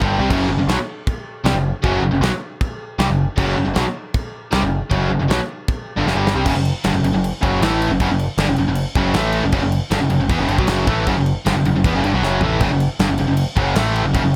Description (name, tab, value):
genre	heavy metal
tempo	156 BPM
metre	4/4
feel	straight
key	unclear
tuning	A4 = 440 Hz
part	biting overdriven guitar	riff	0.0-14.4 s	F#2 to B3	-25 LUFS	equal	none
part	distorted electric guitar	riff	0.0-14.4 s	F#2 to B3	-24 LUFS	equal	overdrive
part	distorted electric guitar	riff	0.0-14.4 s	F#2 to B3	-26 LUFS	equal	overdrive
part	growling picked electric bass	bass	0.0-14.4 s	F#1 to E2	-25 LUFS	equal	overdrive
part	modern studio drum kit	drums	0.0-14.2 s	china cymbal, crash cymbal, kick drum, snare drum, splash cymbal, toms	-25 LUFS	equal	none
room	small room ambience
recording	none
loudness	-19 LUFS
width	mono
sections	0.0-6.5 A section; 6.5-14.4 B section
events	drum fill 6.1-6.5, 12.2-12.6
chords	0.0 F#5; 6.5 F#m